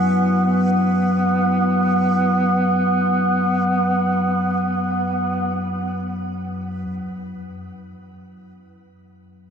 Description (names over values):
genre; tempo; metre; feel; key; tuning
dark ambient drone; free time; none; none; unclear; A4 = 440 Hz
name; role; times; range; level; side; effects
mellow duduk; melody; 0.0-5.8 s; B3; -21 LUFS; right 2 dB; shimmer reverb, diffuse ambient delay
deep dark ambient pad; sustained chords; 0.0-6.9 s; F#2 to F#5; -37 LUFS; left 1 dB; none
deep rumbling drone; drone; 0.0-9.5 s; F#2 to F#3; -21 LUFS; left 1 dB; built-in reverb
backwards swelling texture; texture; 0.0-6.9 s; B4; -40 LUFS; right 3 dB; built-in reverb, shimmer reverb
room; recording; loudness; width
wet cathedral reverb, RT60 4.8 s; dark, warm production; -17 LUFS; side -7 dB against mid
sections
0.0-6.9 A section; 6.9-9.5 B section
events
filter sweep on synth drone 6.9-9.5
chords
0.0 Esus2/F#; 6.9 N.C.